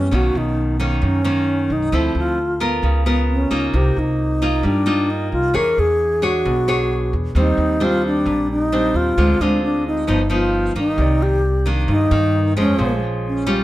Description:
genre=bossa nova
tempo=133 BPM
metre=4/4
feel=straight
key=unclear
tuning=A4 = 440 Hz
part: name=mellow alto flute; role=melody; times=0.0-13.6 s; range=Db4 to Bb4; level=-20 LUFS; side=equal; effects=none
part: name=nylon-string guitar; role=accompaniment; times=0.0-13.6 s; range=F#2 to C#5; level=-21 LUFS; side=equal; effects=none
part: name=upright bass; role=bass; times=0.0-13.6 s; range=G1 to G2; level=-21 LUFS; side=equal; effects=none
part: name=warm concert grand piano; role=accompaniment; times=11.0-13.6 s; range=F4 to D5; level=-30 LUFS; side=right 2 dB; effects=none
room=light reverb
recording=none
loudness=-16 LUFS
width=side -15 dB against mid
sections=0.0-11.0 A section; 11.0-13.6 B section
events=none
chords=0.1 Bmaj9; 1.9 Dm9; 2.8 Db13; 3.7 Cm11; 5.6 E13; 7.4 Eb6; 9.2 Dm7b5; 10.1 G7alt; 11.0 Cm9; 12.8 Bbm7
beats=| 0.12 0.57 1.03 1.48 | 1.93 2.38 2.84 3.29 | 3.74 4.19 4.65 5.10 | 5.55 6.00 6.46 6.91 | 7.36 7.81 8.27 8.72 | 9.17 9.62 10.08 10.53 | 10.98 11.43 11.89 12.34 | 12.79 13.24

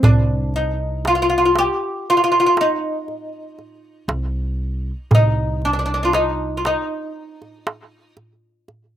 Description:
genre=Arabic maqam ensemble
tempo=118 BPM (eighths)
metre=10/8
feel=straight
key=unclear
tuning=A4 = 439 Hz
part: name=oud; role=melody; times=0.0-8.1 s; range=D4 to G4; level=-18 LUFS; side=equal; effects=slapback echo
part: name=upright bass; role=bass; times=0.0-6.7 s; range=C2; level=-24 LUFS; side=equal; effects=none
part: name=darbuka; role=percussion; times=0.0-8.8 s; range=none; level=-16 LUFS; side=right 1 dB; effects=none
room=little or no reverb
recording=recorded outdoors, with no room sound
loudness=-17 LUFS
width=side -11 dB against mid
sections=0.0-9.0 A section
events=none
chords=none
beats=| 0.04 0.55 1.05 1.56 2.07 2.58 3.08 3.59 4.10 4.61 | 5.12 5.62 6.13 6.64 7.14 7.65 8.16 8.67

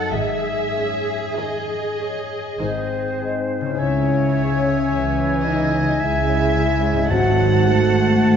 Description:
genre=classical, slow romantic movement for symphony orchestra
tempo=47-56 BPM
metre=3/4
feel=rubato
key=C# minor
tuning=A4 = 440 Hz
part: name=dark studio violin section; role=melody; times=0.0-8.4 s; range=A4 to E5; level=-30 LUFS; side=left 2 dB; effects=none
part: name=concert harp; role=arpeggios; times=0.0-8.4 s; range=F#2 to C#5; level=-27 LUFS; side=left 8 dB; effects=none
part: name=dark studio cello section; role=bass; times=0.0-8.4 s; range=G#2 to G#4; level=-26 LUFS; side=right 4 dB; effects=none
part: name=warm chamber double bass section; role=bass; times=0.1-8.4 s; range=G#1 to C#2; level=-24 LUFS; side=right 5 dB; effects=none
part: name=warm chamber violin section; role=second line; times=1.4-8.4 s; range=G#4 to F#5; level=-30 LUFS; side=right 2 dB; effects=none
part: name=dark chamber viola section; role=accompaniment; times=1.4-8.4 s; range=D#3 to D#4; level=-23 LUFS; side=equal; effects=none
part: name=silver concert flute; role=second line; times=2.6-8.4 s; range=B#4 to F#5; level=-27 LUFS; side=equal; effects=none
part: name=mellow French horn section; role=sustained chords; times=2.6-8.4 s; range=B#3 to F#4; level=-22 LUFS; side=left 2 dB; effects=none
part: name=clear oboe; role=second line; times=3.8-8.4 s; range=G#5 to A5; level=-26 LUFS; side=right 1 dB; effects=none
part: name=warm clarinet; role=second line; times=3.8-8.4 s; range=B#4 to E5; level=-30 LUFS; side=left 4 dB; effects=none
part: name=timpani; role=percussion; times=7.1-8.4 s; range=G#2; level=-26 LUFS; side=left 2 dB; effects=none
room=wet concert hall reverb, RT60 2.1 s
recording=nothing above 7.6 kHz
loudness=-17 LUFS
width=side -8 dB against mid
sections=0.0-3.8 A section; 3.8-8.4 B section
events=none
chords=0.1 G#sus4; 2.6 G#; 3.8 C#m; 7.1 G#7b9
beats=| 0.11 1.38 2.60 | 3.78 4.90 6.01 | 7.10 8.19

